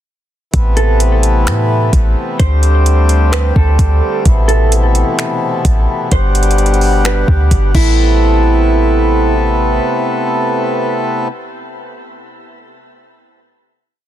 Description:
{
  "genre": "hip hop, atmospheric cloud-rap",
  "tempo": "129 BPM",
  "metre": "4/4",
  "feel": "half-time",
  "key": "A dorian",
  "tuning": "A4 = 439 Hz",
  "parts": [
    { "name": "pedal harmonium", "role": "sustained chords", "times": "0.5-11.3 s", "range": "B2 to F#5", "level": "-16 LUFS", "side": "left 1 dB", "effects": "sidechain pumping" },
    { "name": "clean 808-style bass", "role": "bass", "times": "0.5-9.8 s", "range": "G1 to A2", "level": "-12 LUFS", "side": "equal", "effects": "none" },
    { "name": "smooth R&B drum kit", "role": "drums", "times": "0.5-7.9 s", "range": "crash cymbal, finger snaps, hi-hat, kick drum", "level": "-16 LUFS", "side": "equal", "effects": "overdrive, soft clipping on snare" },
    { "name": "mellow electric guitar", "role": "melody", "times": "0.8-9.3 s", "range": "E4 to C5", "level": "-20 LUFS", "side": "right 3 dB", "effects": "ping-pong delay" }
  ],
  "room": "little or no reverb",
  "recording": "dense, heavily limited modern master",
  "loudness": "-10 LUFS",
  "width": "side -12 dB against mid",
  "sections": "0.5-8.0 verse; 8.0-11.7 final hit",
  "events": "none",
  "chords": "0.5 Amadd9; 2.4 D7sus4; 4.3 Amadd9; 6.1 Gmaj7; 7.7 Amadd9"
}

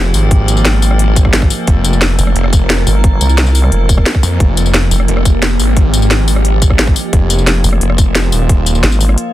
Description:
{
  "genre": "dark technical drum and bass",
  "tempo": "176 BPM",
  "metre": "4/4",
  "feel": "straight",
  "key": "F minor",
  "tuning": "A4 = 440 Hz",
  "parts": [
    { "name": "metallic inharmonic drone", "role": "sustained chords", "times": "0.0-9.3 s", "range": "F3 to Bb4", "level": "-18 LUFS", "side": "equal", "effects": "chorus, built-in reverb, sidechain pumping" },
    { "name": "snarling distorted saw bass", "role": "bass", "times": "0.0-8.8 s", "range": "Eb1 to F2", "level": "-12 LUFS", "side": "equal", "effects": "distortion, sidechain pumping" },
    { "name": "drum and bass drum kit", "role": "drums", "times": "0.1-9.2 s", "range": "hi-hat, rim click, snare drum, tambourine", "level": "-16 LUFS", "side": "left 1 dB", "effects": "none" },
    { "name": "electronic kick drum", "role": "drums", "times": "0.3-8.6 s", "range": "none", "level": "-10 LUFS", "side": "equal", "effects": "none" },
    { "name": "vowel-sweep wobble bass", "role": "bass", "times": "2.2-5.1, 7.6-9.2 s", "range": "F1 to C2", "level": "-10 LUFS", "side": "equal", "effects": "chorus" }
  ],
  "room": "digital ambience",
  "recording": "dense, heavily limited modern master",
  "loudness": "-9 LUFS",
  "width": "side -14 dB against mid",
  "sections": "0.0-9.3 A section",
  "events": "break 9.2",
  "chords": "0.0 F5"
}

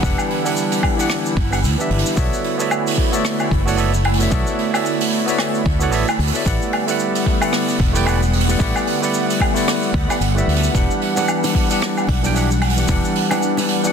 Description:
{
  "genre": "sunset chillout",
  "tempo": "112 BPM",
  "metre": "4/4",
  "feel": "swing 58% on 16ths",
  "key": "E dorian",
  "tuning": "A4 = 440 Hz",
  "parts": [
    { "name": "barky tine electric piano", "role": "accompaniment", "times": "0.0-13.9 s", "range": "E3 to G5", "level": "-21 LUFS", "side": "moving between left 4 dB and right 5 dB", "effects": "auto-pan, vintage 12-bit sampler grit, tape echo, shimmer reverb" },
    { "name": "airy breathy pad", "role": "sustained chords", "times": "0.0-13.9 s", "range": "D3 to F#5", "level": "-22 LUFS", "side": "equal", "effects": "chorus, shimmer reverb" },
    { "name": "mellow fretless electric bass", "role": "bass", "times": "0.0-13.0 s", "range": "E1 to D2", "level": "-19 LUFS", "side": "equal", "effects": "none" },
    { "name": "electronic kick drum", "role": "drums", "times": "0.0-13.0 s", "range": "none", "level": "-21 LUFS", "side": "equal", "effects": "none" },
    { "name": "jazz brush drum kit", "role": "drums", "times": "0.0-13.9 s", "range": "cabasa, hi-hat, rim click, woodblock", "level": "-23 LUFS", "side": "right 1 dB", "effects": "none" },
    { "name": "bongos", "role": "percussion", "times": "11.2-13.7 s", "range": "none", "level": "-28 LUFS", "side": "right 1 dB", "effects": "none" }
  ],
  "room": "light reverb, small room ambience",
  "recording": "dense, heavily limited modern master",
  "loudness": "-16 LUFS",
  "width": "side -7 dB against mid",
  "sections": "0.0-13.9 A section",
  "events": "none",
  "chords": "0.0 Em9; 2.2 Bm11; 6.5 A13sus4; 10.7 Em9"
}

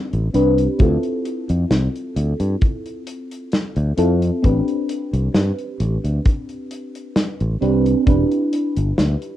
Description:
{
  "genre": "vaporwave",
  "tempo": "66 BPM",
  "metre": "4/4",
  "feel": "swing 53% on 16ths",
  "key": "A minor",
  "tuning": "A4 = 439 Hz",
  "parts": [
    { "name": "mellow FM electric piano", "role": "accompaniment", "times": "0.0-9.4 s", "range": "C4 to B4", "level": "-22 LUFS", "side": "right 1 dB", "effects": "phaser, analog chorus, analog delay" },
    { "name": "fingered electric bass", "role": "bass", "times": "0.1-9.1 s", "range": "E1 to G2", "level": "-19 LUFS", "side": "equal", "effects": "none" },
    { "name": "natural country drum kit", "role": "drums", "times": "0.1-9.4 s", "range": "hi-hat, snare drum", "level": "-22 LUFS", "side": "left 1 dB", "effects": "none" },
    { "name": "kick drum", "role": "drums", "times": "0.8-8.3 s", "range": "none", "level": "-15 LUFS", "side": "equal", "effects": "none" }
  ],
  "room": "moderate small room reverb, RT60 0.6 s",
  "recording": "rough home demo mix, cassette tape",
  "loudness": "-17 LUFS",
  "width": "side -13 dB against mid",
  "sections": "0.0-9.4 A section",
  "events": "none",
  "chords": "0.0 Am11; 0.8 Dm9; 4.4 Am11; 8.1 Em7"
}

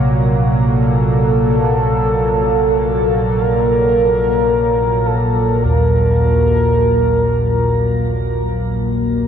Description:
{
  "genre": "dark ambient drone",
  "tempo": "free time",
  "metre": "none",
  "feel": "none",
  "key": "unclear",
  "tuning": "A4 = 443 Hz",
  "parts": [
    { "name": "sweeping resonant pad", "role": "sustained chords", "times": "0.0-9.3 s", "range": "Bb2 to Bb3", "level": "-20 LUFS", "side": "equal", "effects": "chorus, shimmer reverb" },
    { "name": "gamelan-type bossed gongs", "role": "arpeggios", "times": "0.0-9.3 s", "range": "Eb2 to C3", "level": "-21 LUFS", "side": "equal", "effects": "tape echo" },
    { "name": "deep rumbling drone", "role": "drone", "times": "0.0-9.3 s", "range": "Bb1 to Bb2", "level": "-18 LUFS", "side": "equal", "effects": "built-in reverb" },
    { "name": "mellow horn-like synth lead", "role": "melody", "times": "0.7-9.0 s", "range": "A4 to Bb4", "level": "-17 LUFS", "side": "right 1 dB", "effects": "chorus, phaser, cassette tape, shimmer reverb, tape echo" }
  ],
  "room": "wet cathedral reverb, RT60 7.4 s",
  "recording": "none",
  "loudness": "-13 LUFS",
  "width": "side -8 dB against mid",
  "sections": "0.0-9.3 A section",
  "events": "none",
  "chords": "0.0 Gb/Bb"
}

